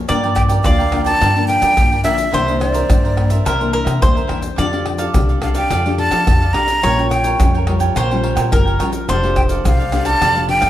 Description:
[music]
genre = samba and choro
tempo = 107 BPM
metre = 4/4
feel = straight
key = F major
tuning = A4 = 440 Hz
[part]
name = bowl-back mandolin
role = second line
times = 0.0-10.7 s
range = Bb4 to D5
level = -22 LUFS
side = equal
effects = none
[part]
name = nylon-string guitar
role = accompaniment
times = 0.0-10.7 s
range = G2 to G4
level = -23 LUFS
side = left 5 dB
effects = none
[part]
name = cavaquinho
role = accompaniment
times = 0.1-10.7 s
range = D4 to G5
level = -24 LUFS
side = right 6 dB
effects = none
[part]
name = upright bass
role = bass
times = 0.1-10.7 s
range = F1 to G3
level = -19 LUFS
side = equal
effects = none
[part]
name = egg shaker, surdo, pandeiro and tamborim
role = percussion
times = 0.1-10.7 s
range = none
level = -19 LUFS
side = equal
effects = none
[part]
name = breathy jazz flute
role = melody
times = 0.4-10.7 s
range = D5 to Bb5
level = -17 LUFS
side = equal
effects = none
[sound]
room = light reverb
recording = none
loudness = -13 LUFS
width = side -12 dB against mid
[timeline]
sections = 0.0-10.7 A section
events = none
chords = 0.1 Gm7; 2.3 C9; 4.6 F69; 6.8 Bbm6; 9.1 F69

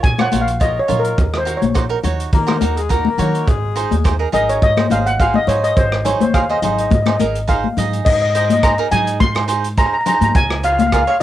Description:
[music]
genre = calypso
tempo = 105 BPM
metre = 4/4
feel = swing 54% on 16ths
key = unclear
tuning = A4 = 440 Hz
[part]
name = steel pan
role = melody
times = 0.0-11.2 s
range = Bb4 to C6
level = -17 LUFS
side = left 1 dB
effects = cassette tape
[part]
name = upright bass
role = bass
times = 0.0-11.2 s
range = Ab1 to Eb3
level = -21 LUFS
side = right 1 dB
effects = none
[part]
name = tight funk drum kit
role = drums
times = 0.0-11.1 s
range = crash cymbal, hi-hat, kick drum, rim click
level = -19 LUFS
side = right 1 dB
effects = cassette tape
[part]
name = cavaquinho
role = accompaniment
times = 0.2-11.2 s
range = Eb4 to Eb5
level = -22 LUFS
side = right 8 dB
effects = cassette tape
[part]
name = congas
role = percussion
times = 0.2-10.9 s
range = none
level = -20 LUFS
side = left 7 dB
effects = none
[part]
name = mellow horn section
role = second line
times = 2.3-4.2 s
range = Ab3 to Bb4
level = -22 LUFS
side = left 6 dB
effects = cassette tape
[sound]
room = light reverb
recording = home recording on cassette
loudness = -14 LUFS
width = side -13 dB against mid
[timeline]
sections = 0.0-8.1 A section; 8.1-11.2 B section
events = steel pan solo 0.0-8.1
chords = 0.0 Bbm; 1.2 Ebm7; 3.5 Ab; 10.4 Db

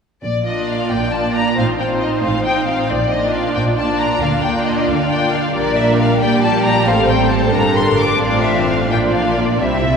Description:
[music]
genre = quick classical-period movement for symphony orchestra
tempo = 90 BPM (dotted quarters)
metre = 6/8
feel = straight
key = Bb major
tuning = A4 = 440 Hz
[part]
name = warm symphonic violin section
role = melody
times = 0.2-10.0 s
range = D5 to D6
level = -20 LUFS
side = left 3 dB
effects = none
[part]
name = rich studio cello section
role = bass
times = 0.2-10.0 s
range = G2 to D3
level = -23 LUFS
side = right 2 dB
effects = none
[part]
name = rich studio double bass section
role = bass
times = 0.2-10.0 s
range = G1 to D2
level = -22 LUFS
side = right 2 dB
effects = none
[part]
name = warm symphonic violin section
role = second line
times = 0.4-10.0 s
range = E4 to F5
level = -19 LUFS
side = left 1 dB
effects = none
[part]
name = rich chamber viola section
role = accompaniment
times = 0.5-10.0 s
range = G3 to Eb4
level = -20 LUFS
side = right 1 dB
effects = none
[sound]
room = wet cathedral reverb, RT60 4.3 s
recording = minimal, uncompressed stereo recording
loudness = -14 LUFS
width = side -6 dB against mid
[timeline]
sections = 0.2-10.0 A section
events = none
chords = 0.2 Bb; 1.6 F7/A; 2.9 Bb; 4.2 Bb/D; 5.6 Gm/Bb; 6.9 Am7; 7.5 Gm; 8.2 F/A; 8.9 Bb

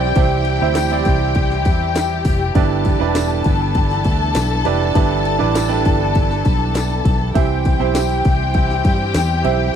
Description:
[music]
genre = piano-driven pop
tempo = 100 BPM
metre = 4/4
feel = straight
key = G major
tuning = A4 = 440 Hz
[part]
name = warm studio violin section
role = second line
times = 0.0-9.8 s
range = G4 to A5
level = -22 LUFS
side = left 6 dB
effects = none
[part]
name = bright concert grand piano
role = accompaniment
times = 0.0-9.8 s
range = G2 to G5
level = -21 LUFS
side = right 16 dB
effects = none
[part]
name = warm studio string section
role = sustained chords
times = 0.0-9.8 s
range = E3 to A4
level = -27 LUFS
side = left 5 dB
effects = none
[part]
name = vintage muted fingered electric bass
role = bass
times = 0.0-9.7 s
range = E1 to G2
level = -20 LUFS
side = left 1 dB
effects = none
[part]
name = house drum kit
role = drums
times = 0.2-9.6 s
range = hi-hat, kick drum, ride cymbal, snare drum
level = -18 LUFS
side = left 1 dB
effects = none
[part]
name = tambourine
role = percussion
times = 0.8-9.3 s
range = none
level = -33 LUFS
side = left 15 dB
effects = none
[sound]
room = little or no reverb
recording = dry, close 1970s-style studio recording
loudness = -14 LUFS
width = side -8 dB against mid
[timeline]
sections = 0.0-9.8 A section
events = none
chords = 0.0 C; 2.6 G6; 7.4 C

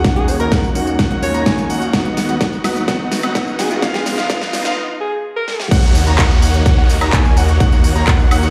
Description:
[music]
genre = EDM, festival progressive house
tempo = 127 BPM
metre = 4/4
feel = straight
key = Eb minor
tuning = A4 = 440 Hz
[part]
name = breathy alto saxophone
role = melody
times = 0.0-5.7 s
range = F#4 to Db5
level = -26 LUFS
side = equal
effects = dub echo
[part]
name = felt-muted upright piano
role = accompaniment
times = 0.0-5.7 s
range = Eb3 to Gb4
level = -26 LUFS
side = equal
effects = sidechain pumping
[part]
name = bright concert grand piano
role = arpeggios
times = 0.0-8.5 s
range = F5 to Bb5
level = -27 LUFS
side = equal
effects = sidechain pumping, low-pass filter, dub echo
[part]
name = supersaw chords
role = riff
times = 0.0-8.5 s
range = Bb3 to Bb5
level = -25 LUFS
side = equal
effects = sidechain pumping, low-pass filter, dub echo
[part]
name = detuned saw bass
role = bass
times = 0.0-8.5 s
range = Db2 to Eb2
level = -22 LUFS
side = equal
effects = sidechain pumping
[part]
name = big-room dance drum kit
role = drums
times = 0.0-8.5 s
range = crash cymbal, handclaps, hi-hat, snare drum, tambourine, woodblock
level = -24 LUFS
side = equal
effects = none
[part]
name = electronic kick drum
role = drums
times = 0.0-8.2 s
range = none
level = -17 LUFS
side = equal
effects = none
[part]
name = riser and downlifter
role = sound effects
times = 1.3-8.5 s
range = none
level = -32 LUFS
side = equal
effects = none
[sound]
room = moderate digital room reverb, RT60 1.0 s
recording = played on a big sound system in a bare room, large studio reverb, high-pass filter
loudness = -15 LUFS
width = mono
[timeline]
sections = 0.0-5.7 A section; 5.7-8.5 B section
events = build-up 0.0-5.7; drum fill 0.0-4.8, 5.5; filter sweep on supersaw synth 0.0-5.7; filter sweep 0.0-5.7; break 4.8-5.7; drop 5.7-8.5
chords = 0.0 Ebm7; 1.9 B/D#; 3.8 Db; 5.7 Ebm7

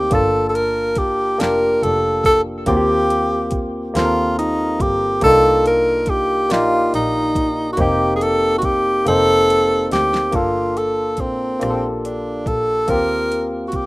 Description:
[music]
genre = slow six-eight R&B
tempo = 47 BPM (dotted quarters)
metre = 6/8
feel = straight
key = G minor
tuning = A4 = 440 Hz
[part]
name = mellow tenor saxophone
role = melody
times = 0.0-13.9 s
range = C4 to Bb4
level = -17 LUFS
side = equal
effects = none
[part]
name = barky tine electric piano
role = accompaniment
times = 0.0-13.9 s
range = Bb3 to A5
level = -21 LUFS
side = left 1 dB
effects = none
[part]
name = clear double bass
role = bass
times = 0.0-13.9 s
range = F1 to Eb2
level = -27 LUFS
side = equal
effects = none
[part]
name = smooth R&B drum kit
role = drums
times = 0.1-13.9 s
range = hi-hat, kick drum, rim click, snare drum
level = -24 LUFS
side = equal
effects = none
[sound]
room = light reverb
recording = rough home demo mix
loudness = -15 LUFS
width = side -22 dB against mid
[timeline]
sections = 0.0-10.3 A section; 10.3-13.9 B section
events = drum fill 9.1-10.3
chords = 0.1 Gm9; 2.7 Eb6; 5.2 Cm11; 7.8 F7sus4; 10.3 Gm9; 12.9 Eb6

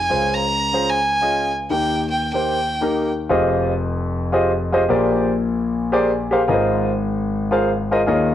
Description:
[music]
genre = gospel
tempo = 151 BPM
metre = 4/4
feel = swing 59% on 8ths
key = Ab major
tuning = A4 = 440 Hz
[part]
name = clear fiddle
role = melody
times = 0.0-3.1 s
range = G5 to Bb5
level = -20 LUFS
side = right 2 dB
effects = none
[part]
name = warm concert grand piano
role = accompaniment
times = 0.0-8.3 s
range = F1 to F5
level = -18 LUFS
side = left 1 dB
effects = none
[sound]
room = moderate large studio reverb, RT60 1.1 s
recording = worn, warbling old tape, cassette tape, warbly pitch drift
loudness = -17 LUFS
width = side -11 dB against mid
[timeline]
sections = 0.0-3.3 A section; 3.3-8.3 B section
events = none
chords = 0.1 Dbmaj7; 1.7 Eb; 3.3 Fm9; 4.9 Bb13; 6.5 Ab69

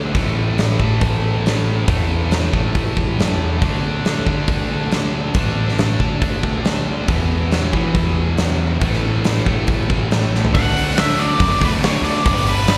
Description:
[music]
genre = classic rock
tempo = 139 BPM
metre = 4/4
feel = straight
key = unclear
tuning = A4 = 440 Hz
[part]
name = distorted electric guitar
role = riff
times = 0.0-12.8 s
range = E2 to D4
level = -25 LUFS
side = equal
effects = overdrive, slapback echo
[part]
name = growling fingered electric bass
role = bass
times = 0.0-12.8 s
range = G1 to E3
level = -22 LUFS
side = equal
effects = overdrive
[part]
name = huge arena drum kit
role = drums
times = 0.1-12.8 s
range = hi-hat, kick drum, snare drum, toms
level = -22 LUFS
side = equal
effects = none
[part]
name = octave-fuzz lead guitar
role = melody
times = 10.5-12.8 s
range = B4 to F#5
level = -22 LUFS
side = equal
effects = distortion, slapback echo
[sound]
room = small room ambience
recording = live gig heard through the venue's PA, recital hall reverb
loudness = -18 LUFS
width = mono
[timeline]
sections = 0.0-10.5 A section; 10.5-12.8 B section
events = drum fill 10.3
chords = 0.1 A5; 3.6 D5; 7.1 E5; 8.8 A5; 10.5 D; 12.3 G

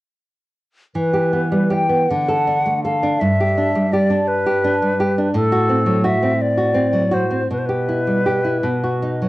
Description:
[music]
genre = romantic duo for flute and classical guitar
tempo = 55 BPM (dotted quarters)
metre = 6/8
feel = uneven beats, rubato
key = E minor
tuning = A4 = 440 Hz
[part]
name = nylon-string guitar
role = accompaniment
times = 0.9-9.3 s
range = G2 to A4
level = -18 LUFS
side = right 1 dB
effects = cassette tape
[part]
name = bright silver concert flute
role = melody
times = 1.0-9.3 s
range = A4 to G5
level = -20 LUFS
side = left 2 dB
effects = none
[sound]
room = moderate studio reverb, RT60 0.6 s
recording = home recording on cassette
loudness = -16 LUFS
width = side -18 dB against mid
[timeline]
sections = 0.9-9.3 A section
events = none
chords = 0.9 Em; 2.1 D; 3.2 G; 5.3 F#dim/A; 7.5 Em/B; 8.6 B

